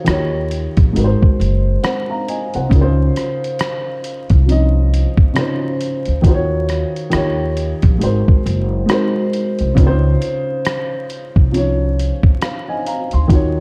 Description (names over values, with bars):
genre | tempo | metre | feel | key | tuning
lo-fi hip hop | 68 BPM | 4/4 | swing 60% on 16ths | unclear | A4 = 440 Hz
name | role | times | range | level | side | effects
dark upright piano | accompaniment | 0.0-13.6 s | Db3 to C6 | -21 LUFS | equal | cassette tape
upright bass | bass | 0.1-13.6 s | Gb1 to Eb2 | -19 LUFS | equal | none
dusty soul sampler-style drum kit | drums | 0.1-13.5 s | hi-hat, kick drum, rim click | -18 LUFS | equal | vintage 12-bit sampler grit
room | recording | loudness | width
small room reverb | dark, warm production, vinyl crackle | -16 LUFS | mono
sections
0.0-13.6 A section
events
upright piano fill 12.0-13.3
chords
0.1 Eb7; 0.9 Ab7; 2.7 Dbmaj7; 6.2 Ebm7; 7.1 Eb7; 8.0 Ab7; 9.8 Dbmaj7